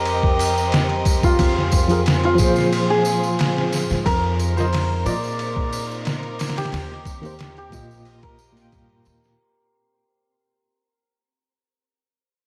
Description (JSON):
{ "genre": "trip hop", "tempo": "90 BPM", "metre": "4/4", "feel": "straight", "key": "unclear", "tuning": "A4 = 440 Hz", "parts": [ { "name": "santur", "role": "melody", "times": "0.0-11.1 s", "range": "F4 to D5", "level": "-26 LUFS", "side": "equal", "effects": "vintage 12-bit sampler grit, tape echo" }, { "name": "clear studio violin section", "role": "sustained chords", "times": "0.0-9.4 s", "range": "Bb3 to Eb5", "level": "-34 LUFS", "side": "equal", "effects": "vintage 12-bit sampler grit" }, { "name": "upright bass", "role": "bass", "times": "0.0-9.4 s", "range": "Bb1 to Bb2", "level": "-28 LUFS", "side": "equal", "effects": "transformer saturation" }, { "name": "wind-like tuned noise texture", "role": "texture", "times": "0.0-9.4 s", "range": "C4 to C5", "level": "-36 LUFS", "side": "equal", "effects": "none" }, { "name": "trip hop sampler-style drum kit", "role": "drums", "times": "0.1-9.4 s", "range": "hi-hat, kick drum, ride cymbal, snare drum", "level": "-25 LUFS", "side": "equal", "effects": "overdrive" }, { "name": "tambourine", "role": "percussion", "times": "0.1-9.4 s", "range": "none", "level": "-36 LUFS", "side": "equal", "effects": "none" }, { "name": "tine electric piano", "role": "accompaniment", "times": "1.9-9.4 s", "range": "Bb2 to G5", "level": "-25 LUFS", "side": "equal", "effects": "tremolo" } ], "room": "small room ambience", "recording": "dry, gritty hardware recording, vinyl crackle", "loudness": "-20 LUFS", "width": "mono", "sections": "0.0-9.4 A section", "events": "fade-out 2.3-9.4", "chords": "0.0 Cm; 1.4 Fm; 4.1 Bbsus4/F; 6.7 Bbsus4" }